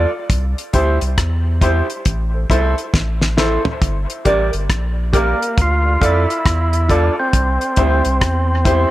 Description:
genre	dub reggae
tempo	68 BPM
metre	4/4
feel	swing 63% on 16ths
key	unclear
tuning	A4 = 440 Hz
part	mellow electric guitar	accompaniment	0.0-8.9 s	E4 to D5	-22 LUFS	right 3 dB	dub echo
part	clear upright piano	stabs	0.0-8.9 s	E4 to D5	-24 LUFS	left 3 dB	dub echo
part	warm sub bass	bass	0.0-8.9 s	G1 to F2	-18 LUFS	equal	none
part	damped 70s drum kit	drums	0.3-8.9 s	hi-hat, kick drum, rim click, snare drum, toms	-18 LUFS	equal	none
part	overdriven tonewheel organ	melody	5.2-8.9 s	Bb3 to F4	-19 LUFS	right 1 dB	dub echo
room	light reverb, small room ambience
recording	none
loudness	-14 LUFS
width	side -15 dB against mid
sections	0.0-8.9 A section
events	break 0.0-3.8; drum fill 2.9-3.8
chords	0.3 C; 2.1 Am; 3.8 Gm; 5.6 Dm; 7.3 C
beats	| 0.30 1.18 2.06 2.94 | 3.82 4.70 5.58 6.46 | 7.33 8.21

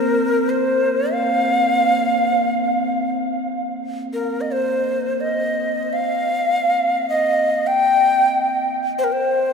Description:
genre	world meditative, free-time meditation music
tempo	free time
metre	none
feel	none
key	C minor pentatonic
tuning	A4 = 440 Hz
part	breathy Native American-style cedar flute	melody	0.0-9.5 s	Bb4 to G5	-18 LUFS	left 1 dB	ping-pong delay
part	bronze singing bowl	texture	0.0-7.0 s	Bb3 to C4	-25 LUFS	right 1 dB	none
room	wet cathedral reverb, RT60 6.1 s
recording	in a vast, echoing space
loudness	-17 LUFS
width	side -5 dB against mid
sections	0.0-9.5 A section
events	none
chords	none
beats	free time

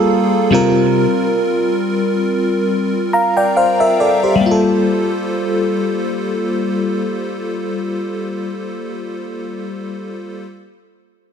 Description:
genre	R&B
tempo	69 BPM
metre	4/4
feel	swing 54% on 16ths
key	G minor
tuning	A4 = 440 Hz
part	FM electric piano with soft pad layer	accompaniment	0.0-10.4 s	G3 to Bb5	-15 LUFS	left 1 dB	chorus, tremolo
part	direct-recorded clean electric guitar	arpeggios	0.0-1.6 s	C3 to A4	-20 LUFS	right 11 dB	digital delay
room	light reverb, digital ambience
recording	dense, heavily limited modern master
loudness	-14 LUFS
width	side -7 dB against mid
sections	0.0-4.4 A section; 4.4-7.9 B section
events	none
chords	0.0 Gm9; 0.5 C7sus4; 4.4 Gm9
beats	0.09 | 0.96 1.83 2.70 3.57 | 4.44 5.31 6.18 7.05

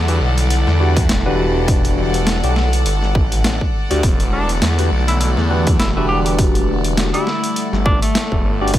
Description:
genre	glitch hop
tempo	102 BPM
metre	4/4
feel	swing 57% on 16ths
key	E minor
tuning	A4 = 440 Hz
part	warbly tape-like pad	sustained chords	0.0-8.8 s	D3 to E4	-26 LUFS	left 1 dB	chorus, built-in reverb, sidechain pumping
part	phased detuned saw bass	bass	0.0-8.8 s	E1 to E2	-18 LUFS	equal	phaser, tube saturation
part	rich chamber string section	texture	0.0-8.8 s	A4 to F#5	-26 LUFS	left 2 dB	sidechain pumping
part	barky tine electric piano	stabs	0.1-8.7 s	D4 to D5	-22 LUFS	left 1 dB	overdrive, phaser, sidechain pumping, dub echo
part	boom bap sampler-style drum kit	drums	0.1-8.8 s	hi-hat, snare drum	-22 LUFS	equal	overdrive, studio reverb
part	electronic kick drum	drums	1.0-8.8 s	none	-17 LUFS	equal	studio reverb
part	warm tenor saxophone	melody	4.3-8.6 s	A3 to G4	-24 LUFS	equal	vintage 12-bit sampler grit, dub echo
room	light reverb, digital ambience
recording	none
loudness	-14 LUFS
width	side -13 dB against mid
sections	0.0-8.8 A section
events	none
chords	0.0 Em7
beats	0.50 1.09 | 1.68 2.27 2.86 3.44 | 4.03 4.62 5.21 5.80 | 6.39 6.97 7.56 8.15 | 8.74

